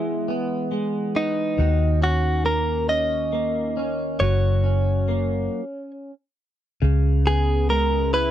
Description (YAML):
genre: six-eight pop ballad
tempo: 46 BPM (dotted quarters)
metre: 6/8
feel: straight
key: unclear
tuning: A4 = 441 Hz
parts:
  - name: direct-recorded clean electric guitar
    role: melody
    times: 0.0-8.3 s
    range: D#4 to D#5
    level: -24 LUFS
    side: equal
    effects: none
  - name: direct-recorded clean electric guitar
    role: accompaniment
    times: 0.0-8.3 s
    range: C#3 to F#4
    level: -26 LUFS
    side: equal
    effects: double-tracked left and right
  - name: vintage muted fingered electric bass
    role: bass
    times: 1.6-8.3 s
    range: F#1 to D#2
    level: -21 LUFS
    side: equal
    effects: none
room: little or no reverb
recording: dry, close 1970s-style studio recording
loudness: -20 LUFS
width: side -11 dB against mid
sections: 0.0-6.8 A section; 6.8-8.3 B section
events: stop 5.5-6.8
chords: 0.0 E; 1.6 D#m7; 4.2 F#; 6.8 C#7(no3)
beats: 0.28 | 1.59 2.90 | 4.21 5.52 | 6.83 8.14